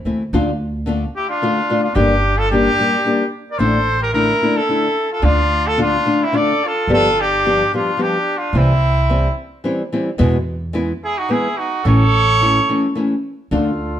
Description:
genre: mexican folk, mariachi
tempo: 109 BPM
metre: 3/4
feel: straight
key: D minor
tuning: A4 = 441 Hz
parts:
  - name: nylon-string guitar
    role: accompaniment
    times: 0.1-13.7 s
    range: E2 to G4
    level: -18 LUFS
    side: left 2 dB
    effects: none
  - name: upright bass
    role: bass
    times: 0.1-14.0 s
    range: G1 to E2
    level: -19 LUFS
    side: right 1 dB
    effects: none
  - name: bright trumpet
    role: melody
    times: 1.2-12.9 s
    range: E4 to D5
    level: -18 LUFS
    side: equal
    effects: none
  - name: clear trumpet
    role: second line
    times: 1.2-12.9 s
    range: C4 to Bb4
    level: -25 LUFS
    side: right 4 dB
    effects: none
  - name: warm woodwind section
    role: sustained chords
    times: 13.5-14.0 s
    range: D3 to F4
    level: -26 LUFS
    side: left 1 dB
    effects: none
room: wet stone room reverb, RT60 1.0 s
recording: band playing live in one room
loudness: -14 LUFS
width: side -10 dB against mid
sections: 0.3-14.0 A section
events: none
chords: 0.3 Dm; 2.0 Gm; 3.6 Asus4; 5.2 Dm; 6.9 G7; 8.5 C; 10.2 E; 11.9 A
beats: | 0.32 0.87 1.42 | 1.97 2.51 3.05 | 3.60 4.14 4.69 | 5.24 5.79 6.34 | 6.89 7.45 8.00 | 8.55 9.10 9.65 | 10.20 10.75 11.30 | 11.85 12.41 12.97 | 13.53

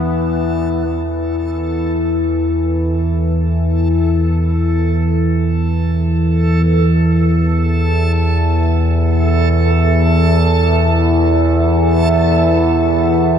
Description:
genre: dark ambient drone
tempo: free time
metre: none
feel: none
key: unclear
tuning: A4 = 440 Hz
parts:
  - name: deep dark ambient pad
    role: sustained chords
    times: 0.0-13.4 s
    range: E3 to E5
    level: -22 LUFS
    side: right 2 dB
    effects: chorus, built-in reverb
  - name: analog drone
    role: drone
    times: 0.0-13.4 s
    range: E2 to E3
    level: -13 LUFS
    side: equal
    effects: chorus
  - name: backwards swelling texture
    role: texture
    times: 0.0-13.4 s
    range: A4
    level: -23 LUFS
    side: right 2 dB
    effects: built-in reverb
room: wet cathedral reverb, RT60 6.0 s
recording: in a vast, echoing space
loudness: -12 LUFS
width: side -8 dB against mid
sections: 0.9-13.4 A section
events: fade-in on ambient pad 0.9-13.4; fade-in on synth texture 0.9-13.4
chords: 0.0 E5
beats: free time

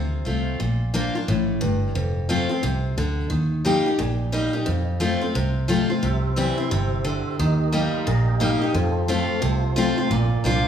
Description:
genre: honky-tonk and classic country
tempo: 177 BPM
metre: 4/4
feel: swing 62% on 8ths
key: Bb major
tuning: A4 = 440 Hz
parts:
  - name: picked steel-string acoustic guitar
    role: accompaniment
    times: 0.0-10.7 s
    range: F2 to G4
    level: -22 LUFS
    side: left 1 dB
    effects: none
  - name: vintage muted fingered electric bass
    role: bass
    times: 0.0-10.7 s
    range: F1 to F2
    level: -24 LUFS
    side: right 1 dB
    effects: none
  - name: mellow tonewheel organ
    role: accompaniment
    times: 6.0-10.7 s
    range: F4 to C6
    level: -30 LUFS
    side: right 4 dB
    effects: slow rotary speaker, chorus vibrato
room: wet large studio reverb, RT60 1.4 s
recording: band playing live in one room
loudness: -20 LUFS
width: side -8 dB against mid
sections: 0.6-10.7 A section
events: tonewheel organ fill 7.7-8.8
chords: 0.0 F; 0.6 Bb; 2.0 F; 3.3 Eb; 4.7 F; 6.0 C; 7.4 Eb; 8.8 F; 10.1 Bb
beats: 0.26 | 0.60 0.94 1.28 1.62 | 1.96 2.30 2.64 2.98 | 3.32 3.66 4.00 4.33 | 4.67 5.01 5.35 5.69 | 6.03 6.37 6.71 7.05 | 7.39 7.73 8.07 8.41 | 8.75 9.09 9.43 9.77 | 10.11 10.45

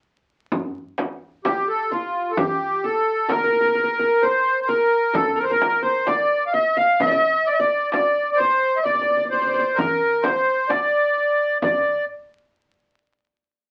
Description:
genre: Arabic maqam ensemble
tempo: 130 BPM (eighths)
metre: 10/8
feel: straight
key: D maqam bayati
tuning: A4 = 441 Hz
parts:
  - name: darbuka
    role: percussion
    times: 0.5-12.1 s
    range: none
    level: -34 LUFS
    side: equal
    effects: none
  - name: frame drum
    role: percussion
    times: 0.5-12.1 s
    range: none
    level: -29 LUFS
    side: equal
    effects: none
  - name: accordion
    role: melody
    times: 1.4-12.1 s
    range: F4 to F5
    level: -21 LUFS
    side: equal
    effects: light tremolo tuning
  - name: qanun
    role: second line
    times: 1.4-12.1 s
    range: F4 to F5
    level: -31 LUFS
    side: equal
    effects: none
room: wet club reverb, RT60 0.5 s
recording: very old 78 rpm record, vinyl crackle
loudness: -20 LUFS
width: mono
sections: 0.0-11.6 A section; 11.6-13.7 B section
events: none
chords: none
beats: 0.05 0.52 0.98 1.45 1.91 | 2.37 2.83 3.30 3.76 4.22 4.69 5.15 5.61 6.08 6.54 | 7.00 7.47 7.93 8.39 8.86 9.32 9.78 10.24 10.71 11.17 | 11.63

